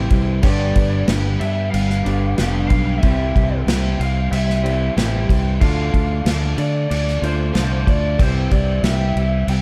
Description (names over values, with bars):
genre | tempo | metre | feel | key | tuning
folk rock and heartland rock | 93 BPM | 4/4 | straight | unclear | A4 = 438 Hz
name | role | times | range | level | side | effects
dark upright piano | accompaniment | 0.0-9.4 s | B3 to E5 | -36 LUFS | equal | none
picked steel-string acoustic guitar | accompaniment | 0.0-9.6 s | G2 to A4 | -32 LUFS | equal | none
mellow tonewheel organ | sustained chords | 0.0-9.6 s | G4 to E6 | -41 LUFS | equal | none
electric guitar through a small old amp | riff | 0.0-9.6 s | G2 to G4 | -27 LUFS | equal | none
fingered electric bass | bass | 0.0-9.6 s | F1 to D3 | -22 LUFS | equal | none
unplugged drum kit | drums | 0.1-9.6 s | crash cymbal, kick drum, snare drum | -23 LUFS | equal | none
lead guitar through a small cranked amp | melody | 0.4-9.6 s | C5 to G5 | -29 LUFS | equal | overdrive, plate reverb, digital delay
room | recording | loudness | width
light reverb | dark, warm production | -18 LUFS | mono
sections
0.0-9.6 A section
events
none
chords
0.4 G; 3.0 C; 5.6 Dm; 8.2 C